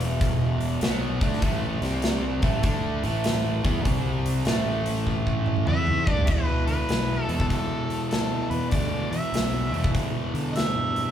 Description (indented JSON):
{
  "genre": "blues rock power trio and southern rock",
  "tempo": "98 BPM",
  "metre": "4/4",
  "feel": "swing 66% on 8ths",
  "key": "E minor",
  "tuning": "A4 = 440 Hz",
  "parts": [
    { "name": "fuzz guitar", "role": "riff", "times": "0.0-11.1 s", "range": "E2 to G4", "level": "-27 LUFS", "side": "right 1 dB", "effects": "distortion" },
    { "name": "fuzz fingered electric bass", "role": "bass", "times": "0.0-11.1 s", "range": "E1 to E3", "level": "-30 LUFS", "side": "left 1 dB", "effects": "overdrive" },
    { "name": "big rock drum kit", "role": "drums", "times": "0.0-11.1 s", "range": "crash cymbal, hi-hat, kick drum, snare drum, toms", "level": "-26 LUFS", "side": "equal", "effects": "none" },
    { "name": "mellow harmonica", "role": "melody", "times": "5.7-11.1 s", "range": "A4 to E5", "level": "-29 LUFS", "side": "equal", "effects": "overdrive" }
  ],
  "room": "light reverb",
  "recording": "band playing live in one room",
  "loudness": "-22 LUFS",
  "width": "side -10 dB against mid",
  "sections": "0.0-6.3 A section; 6.3-11.1 B section",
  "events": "drum fill 5.1-6.3",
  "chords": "0.0 E5; 1.4 A5; 1.7 C5; 2.3 A5; 3.8 C5; 4.5 A5; 6.3 E5"
}